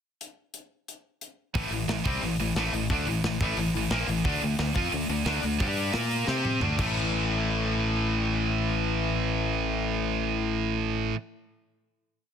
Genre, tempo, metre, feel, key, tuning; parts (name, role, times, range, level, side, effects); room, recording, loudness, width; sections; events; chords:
heavy metal; 178 BPM; 4/4; straight; A minor; A4 = 441 Hz
tight metal drum kit; drums; 0.2-6.9 s; crash cymbal, hi-hat, kick drum, snare drum, toms; -32 LUFS; equal; soft clipping on kick
scooped high-gain guitar; riff; 1.5-11.2 s; A2 to C5; -29 LUFS; right 11 dB; distortion
distorted electric guitar; riff; 1.6-11.2 s; A2 to C5; -30 LUFS; left 10 dB; overdrive
growling fingered electric bass; bass; 1.6-11.1 s; A1 to C3; -31 LUFS; equal; overdrive
little or no reverb; dense, heavily limited modern master; -25 LUFS; side -8 dB against mid
0.2-1.5 pickup bar; 1.5-7.0 riff; 7.0-9.7 final hit
drum fill 6.3-7.0
0.2 N.C.; 1.5 Am; 4.3 D5; 5.6 G5; 5.9 Bb5; 6.3 C5; 6.6 D5; 6.8 A5